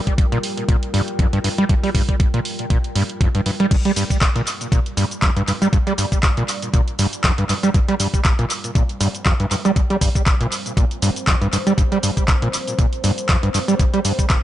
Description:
acid house; 119 BPM; 4/4; swing 56% on 16ths; G minor; A4 = 441 Hz
deep dark ambient pad; texture; 0.0-14.4 s; G3 to G5; -31 LUFS; equal; chorus, built-in reverb, sidechain pumping
electronic kick drum; drums; 0.1-14.4 s; -17 LUFS; equal
punchy analog drum machine; drums; 0.1-14.4 s; crash cymbal, handclaps, hi-hat, shaker; -24 LUFS; equal; tape echo
overdriven acid bass; riff; 0.3-14.3 s; G1 to G3; -20 LUFS; right 1 dB; analog chorus, sidechain pumping, tape echo
light reverb, digital ambience; echo-heavy mix, nothing above 10.8 kHz; -16 LUFS; side -13 dB against mid
0.0-14.4 A section
fade-in on ambient pad 0.0-14.4; filter sweep on acid bass 0.0-14.4
0.0 Gm
0.18 0.69 1.19 | 1.70 2.20 2.70 3.21 | 3.71 4.22 4.72 5.22 | 5.73 6.23 6.74 7.24 | 7.75 8.25 8.75 9.26 | 9.76 10.27 10.77 11.28 | 11.78 12.28 12.79 13.29 | 13.80 14.30

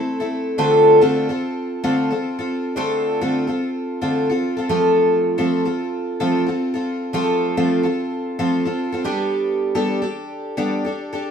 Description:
pop; 110 BPM; 4/4; swing 60% on 16ths; A4 = 440 Hz
picked twelve-string acoustic guitar; solo; 0.0-11.3 s; D3 to A4; -18 LUFS; equal
light reverb; minimal, uncompressed stereo recording; -17 LUFS; side -7 dB against mid
0.0-11.3 A section
0.0 Am; 0.6 Dm7; 4.7 F; 9.1 Gadd9
0.04 | 0.59 1.14 1.68 2.23 | 2.77 3.32 3.87 4.41 | 4.96 5.50 6.05 6.60 | 7.14 7.69 8.24 8.78 | 9.33 9.88 10.42 10.97

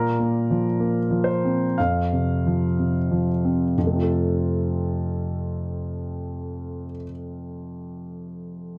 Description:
neoclassical minimalist piano; 58-68 BPM; 4/4; rubato; F major; A4 = 440 Hz
warm grand piano; solo; 0.0-8.8 s; F2 to F5; -24 LUFS; equal
light reverb; dark, warm production; -24 LUFS; mono
0.0-3.8 A section; 3.8-7.5 B section
slowing down 0.0-3.8
0.0 Bbsus2; 1.8 F5; 3.8 F
0.76 1.77 2.76 | 3.75 4.70 5.64 6.59

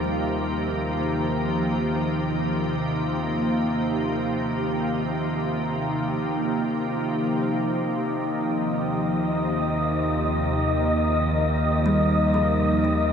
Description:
ambient; free time; Eb major; A4 = 439 Hz
soft additive organ-like pad; sustained chords; 0.0-13.1 s; C3 to G4; -24 LUFS; equal; ensemble chorus, built-in reverb
kalimba; arpeggios; 0.0-13.1 s; Eb3 to F5; -30 LUFS; equal; ping-pong delay
warm sub bass; bass; 0.0-13.1 s; Eb2; -32 LUFS; equal
analog drone; drone; 0.0-13.1 s; Eb3 to Bb3; -29 LUFS; right 1 dB; chorus
wind-like tuned noise texture; texture; 8.2-13.1 s; Eb5 to Eb6; -26 LUFS; left 2 dB; built-in reverb
wet huge ambient reverb, RT60 7.0 s; cassette tape; -22 LUFS; side -7 dB against mid
0.0-7.4 A section; 7.4-13.1 B section
fade-out on sub bass 0.0-7.4
0.0 Eb69
free time

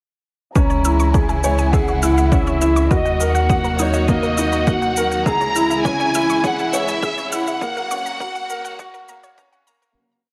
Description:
piano and strings electronica; 102 BPM; 4/4; straight; C# dorian; A4 = 442 Hz
clear studio violin section; melody; 0.6-9.4 s; C#5 to A#5; -25 LUFS; equal; low-pass filter
rich symphonic string section; sustained chords; 0.6-9.9 s; C#3 to F#4; -28 LUFS; equal; sidechain pumping
unison pluck; arpeggios; 0.6-9.9 s; A#4 to E6; -33 LUFS; equal; sidechain pumping, delay
felt-muted upright piano; riff; 0.6-10.0 s; A#3 to C#5; -24 LUFS; equal; delay
warm sub bass; bass; 0.6-9.9 s; F#1 to D#2; -24 LUFS; equal; sidechain pumping
electronic kick drum; drums; 0.6-9.5 s; -22 LUFS; equal; overdrive
shaker; drums; 0.6-9.9 s; -33 LUFS; equal; overdrive
moderate echo chamber reverb, RT60 2.2 s; high-pass filter; -18 LUFS; mono
0.6-10.0 build
build-up 0.6-10.0; filter sweep on violin section 0.6-10.0; filter sweep 0.6-10.0; fade-out 6.8-10.0
0.6 C#m; 2.9 D#m; 5.3 C#m; 7.6 F#
| 0.56 1.14 1.73 2.32 | 2.91 3.50 4.08 4.67 | 5.26 5.85 6.44 7.03 | 7.62 8.20 8.79 9.38

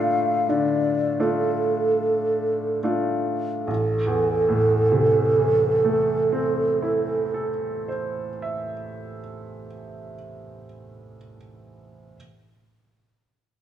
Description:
classical, romantic duo for flute and grand piano; 32-46 BPM; 4/4; rubato; A minor; A4 = 440 Hz
mellow hollow concert flute; melody; 0.0-7.5 s; A4 to F5; -21 LUFS; right 2 dB
bright baby grand piano; accompaniment; 0.0-12.2 s; A1 to E5; -25 LUFS; equal
moderate recital hall reverb, RT60 1.6 s; small room ambience; -20 LUFS; side -10 dB against mid
0.0-3.7 A section; 3.7-9.9 B section
slowing down 0.0-3.7
0.0 Dm/A; 3.7 Am
0.49 1.96 | 3.68 5.23 6.79 8.34

